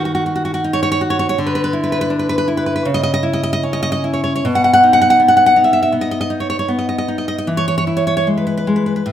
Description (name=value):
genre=romantic piece for solo classical guitar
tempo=70-82 BPM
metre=4/4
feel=rubato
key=E major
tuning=A4 = 442 Hz
part: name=nylon-string guitar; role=solo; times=0.0-9.1 s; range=A2 to F#5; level=-14 LUFS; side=equal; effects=none
room=light reverb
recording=minimal, uncompressed stereo recording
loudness=-13 LUFS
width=side -10 dB against mid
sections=0.0-9.1 A section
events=none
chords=0.0 D#m7; 1.4 Bmadd11/D; 2.9 C#madd9; 4.5 B; 7.5 E